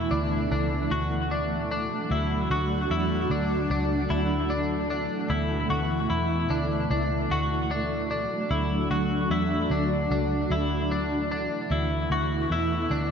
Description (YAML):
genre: dream pop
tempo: 75 BPM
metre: 4/4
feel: straight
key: D major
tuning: A4 = 440 Hz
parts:
  - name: granular cloud pad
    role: sustained chords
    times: 0.0-13.1 s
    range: B2 to F#4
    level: -28 LUFS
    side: right 1 dB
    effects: built-in reverb
  - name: twelve-string electric guitar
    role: arpeggios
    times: 0.0-13.1 s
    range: D4 to F#4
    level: -29 LUFS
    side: left 2 dB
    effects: lush chorus, tape echo
  - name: vintage muted picked electric bass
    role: bass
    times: 0.0-13.1 s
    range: C#2 to E2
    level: -29 LUFS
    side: equal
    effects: none
room: moderate plate reverb, RT60 3.1 s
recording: echo-heavy mix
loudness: -24 LUFS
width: side -7 dB against mid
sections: 0.0-13.1 A section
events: none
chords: 0.0 Esus4; 0.9 D; 4.1 Esus4; 7.3 D; 10.5 Esus4